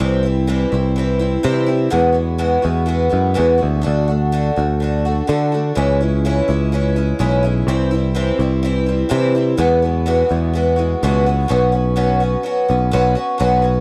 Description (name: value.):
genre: folk rock and heartland rock.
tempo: 126 BPM.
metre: 4/4.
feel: straight.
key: E mixolydian.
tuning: A4 = 441 Hz.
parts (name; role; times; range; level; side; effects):
picked twelve-string acoustic guitar; accompaniment; 0.0-13.8 s; E2 to F#4; -20 LUFS; equal; none.
picked electric bass; bass; 0.0-13.8 s; B1 to D3; -20 LUFS; equal; none.
room: little or no reverb.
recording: dry, close 1970s-style studio recording.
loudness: -17 LUFS.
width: mono.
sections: 0.0-11.5 A section; 11.5-13.8 B section.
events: none.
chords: 0.0 C; 1.9 Eadd9; 3.9 D; 5.8 C#m; 7.7 C; 9.6 Eadd9; 11.5 Bsus2.